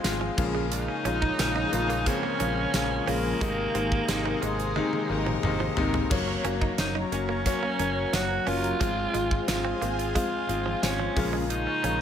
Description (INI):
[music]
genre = 1980s-style pop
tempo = 89 BPM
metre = 4/4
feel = straight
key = unclear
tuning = A4 = 440 Hz
[part]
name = raspy alto saxophone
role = melody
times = 0.0-12.0 s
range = Ab3 to Gb4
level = -30 LUFS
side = right 2 dB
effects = none
[part]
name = clear concert grand piano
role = accompaniment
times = 0.0-12.0 s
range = C3 to F4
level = -29 LUFS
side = left 5 dB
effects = none
[part]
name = lush unison pad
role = sustained chords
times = 0.0-12.0 s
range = Gb3 to C6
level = -36 LUFS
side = equal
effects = chorus, phaser
[part]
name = vintage muted fingered electric bass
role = bass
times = 0.0-12.0 s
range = Gb1 to Bb1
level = -33 LUFS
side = right 1 dB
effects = none
[part]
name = gated 80s drum kit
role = drums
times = 0.0-12.0 s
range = crash cymbal, hi-hat, kick drum, snare drum, tambourine, toms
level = -31 LUFS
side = right 1 dB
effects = none
[part]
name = direct-recorded clean electric guitar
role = riff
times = 0.2-11.9 s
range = F3 to Eb4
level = -37 LUFS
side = right 9 dB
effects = lush chorus, tape echo
[part]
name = mellow synth brass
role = stabs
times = 0.4-11.5 s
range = Eb3 to Bb4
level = -37 LUFS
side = left 2 dB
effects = chorus, tape echo
[part]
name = rich studio violin section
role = second line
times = 5.1-6.6 s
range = Bb4 to Db5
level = -38 LUFS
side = equal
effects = tape echo
[sound]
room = light reverb, studio reverb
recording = none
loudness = -24 LUFS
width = side -9 dB against mid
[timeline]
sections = 0.0-12.0 A section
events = drum fill 4.8-6.1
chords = 0.4 Bbm7; 3.4 Abadd9; 6.1 Gb; 8.8 Fm/Ab; 11.2 Bbm7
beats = 0.04 | 0.72 1.39 2.06 2.74 | 3.41 4.09 4.76 5.44 | 6.11 6.78 7.46 8.13 | 8.81 9.48 10.15 10.83 | 11.50